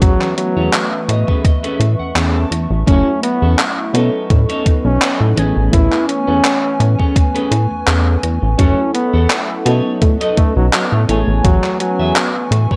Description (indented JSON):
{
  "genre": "vaporwave",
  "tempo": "84 BPM",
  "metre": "4/4",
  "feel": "swing 54% on 16ths",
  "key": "A lydian",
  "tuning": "A4 = 441 Hz",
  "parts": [
    { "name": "breathy flugelhorn", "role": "melody", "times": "0.0-12.4 s", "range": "F#3 to E4", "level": "-21 LUFS", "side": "equal", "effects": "analog delay" },
    { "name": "FM electric piano with soft pad layer", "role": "accompaniment", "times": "0.0-12.8 s", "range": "E3 to G#5", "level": "-24 LUFS", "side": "equal", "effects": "phaser, subtle chorus, cassette tape, analog delay" },
    { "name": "warbly tape-like pad", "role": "sustained chords", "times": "0.0-12.8 s", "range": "A3 to C#6", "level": "-30 LUFS", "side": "equal", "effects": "chorus, built-in reverb" },
    { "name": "clean electric guitar", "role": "riff", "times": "0.0-12.8 s", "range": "C#4 to A5", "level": "-26 LUFS", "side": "equal", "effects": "lush chorus, analog delay" },
    { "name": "chorused synth bass", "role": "bass", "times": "0.0-12.7 s", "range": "F#1 to B2", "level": "-17 LUFS", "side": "equal", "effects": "none" },
    { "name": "electronic kick drum", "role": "drums", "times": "0.0-12.8 s", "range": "none", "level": "-16 LUFS", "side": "equal", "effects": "none" },
    { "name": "gated 80s digital drum machine", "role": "drums", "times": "0.0-12.7 s", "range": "handclaps, hi-hat", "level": "-21 LUFS", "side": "equal", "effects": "gated reverb" }
  ],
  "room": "digital ambience",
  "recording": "dry, gritty hardware recording, cassette tape",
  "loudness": "-15 LUFS",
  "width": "mono",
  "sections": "0.0-12.8 A section",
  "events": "clean electric guitar fill 0.7-2.9",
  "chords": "0.0 Amaj9; 2.9 F#m7; 3.9 B9; 5.4 Amaj9; 8.6 F#m7; 9.7 B9; 11.1 Amaj9",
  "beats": "| 0.02 0.73 1.45 2.16 | 2.87 3.59 4.30 5.02 | 5.73 6.45 7.16 7.87 | 8.59 9.30 10.02 10.73 | 11.45 12.16"
}